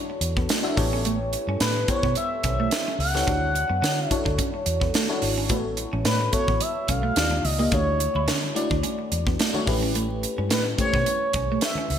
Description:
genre	polished 1980s jazz-funk pop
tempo	108 BPM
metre	4/4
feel	swing 54% on 16ths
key	A major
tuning	A4 = 443 Hz
part	FM electric piano	accompaniment	0.0-12.0 s	A3 to E5	-28 LUFS	left 2 dB	analog chorus
part	clean electric guitar	riff	0.0-11.9 s	A3 to E4	-32 LUFS	right 5 dB	wide subtle chorus
part	vintage muted fingered electric bass	bass	0.2-12.0 s	G#1 to D3	-27 LUFS	equal	none
part	crisp fusion drum kit	drums	0.2-12.0 s	hi-hat, kick drum, snare drum	-26 LUFS	equal	gated reverb
part	expressive synth lead	melody	1.6-12.0 s	B4 to F#5	-27 LUFS	equal	chorus
part	congas	percussion	5.9-12.0 s	none	-40 LUFS	left 2 dB	none
room	moderate plate reverb, RT60 2.4 s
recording	bright 1980s-style digital production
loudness	-21 LUFS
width	side -9 dB against mid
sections	0.0-12.0 A section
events	none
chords	0.0 Dmaj9; 0.8 A9; 3.3 Dmaj9; 5.5 A69; 7.2 D#maj9; 7.7 Dmaj9; 9.7 A9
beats	0.50 | 1.05 1.61 2.17 2.72 | 3.28 3.83 4.39 4.95 | 5.50 6.06 6.61 7.17 | 7.72 8.28 8.84 9.39 | 9.95 10.51 11.06 11.62

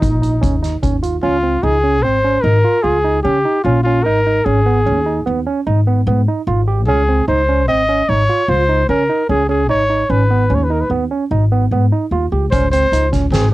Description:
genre	progressive instrumental, band music in an uneven meter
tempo	149 BPM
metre	7/4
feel	straight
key	unclear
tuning	A4 = 443 Hz
part	mellow trumpet	melody	0.0-13.5 s	Eb4 to Eb5	-16 LUFS	left 1 dB	cassette tape
part	barky tine electric piano	arpeggios	0.0-13.5 s	Cb4 to G4	-20 LUFS	right 5 dB	overdrive, cassette tape
part	upright bass	bass	0.0-13.5 s	Ab1 to Db3	-16 LUFS	left 1 dB	none
part	soft-mallet drum kit	drums	0.0-1.1, 12.5-13.4 s	hi-hat, kick drum, snare drum	-19 LUFS	left 1 dB	cassette tape
room	light reverb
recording	home recording on cassette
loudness	-13 LUFS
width	side -17 dB against mid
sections	0.0-1.2 A section; 1.2-13.5 B section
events	none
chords	0.0 Eb5; 1.2 Db; 4.1 Abm; 6.9 Dbmaj7(no3); 9.7 Abm; 12.5 Dbmaj7(no3)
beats	0.02 0.42 0.83 | 1.23 1.64 2.04 2.44 2.85 3.25 3.65 | 4.06 4.46 4.87 5.27 5.67 6.07 6.48 | 6.88 7.28 7.68 8.09 8.49 8.89 9.29 | 9.70 10.10 10.50 10.91 11.31 11.71 12.11 | 12.52 12.92 13.32

